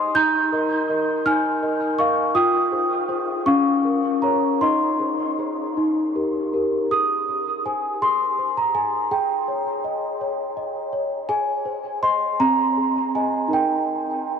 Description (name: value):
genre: classical, lullaby for celesta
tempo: 54 BPM (dotted quarters)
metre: 6/8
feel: straight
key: Ab major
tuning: A4 = 440 Hz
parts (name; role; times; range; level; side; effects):
- celesta; solo; 0.0-14.4 s; C4 to G6; -19 LUFS; equal; diffuse ambient delay
room: wet huge ambient reverb, RT60 8.0 s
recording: dreamy mix soaked in reverb, cassette tape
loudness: -19 LUFS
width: side -6 dB against mid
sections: 0.0-6.9 A section; 6.9-14.4 B section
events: none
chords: 0.1 Eb; 2.3 Fm; 3.5 Bbm7/Db; 4.6 Ab/Eb; 5.8 Eb; 6.9 Ab; 9.1 Eb7/Ab; 11.3 Ab; 12.4 Ab/C; 13.5 Eb